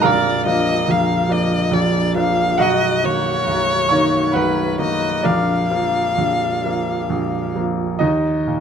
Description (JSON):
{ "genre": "classical, romantic duo for violin and grand piano", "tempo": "64-72 BPM", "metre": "3/4", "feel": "rubato", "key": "unclear", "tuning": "A4 = 440 Hz", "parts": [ { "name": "rich violin", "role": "melody", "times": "0.0-7.6 s", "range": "B4 to F5", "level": "-20 LUFS", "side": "left 3 dB", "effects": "none" }, { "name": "bright grand piano", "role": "accompaniment", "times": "0.0-8.6 s", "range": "Bb0 to Db6", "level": "-17 LUFS", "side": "right 1 dB", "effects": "none" } ], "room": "moderate studio reverb, RT60 0.6 s", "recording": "none", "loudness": "-16 LUFS", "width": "side -7 dB against mid", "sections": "0.0-8.0 A section", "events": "none", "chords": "0.0 Bb; 2.6 Bmaj7; 5.2 Bb; 8.0 Eb5" }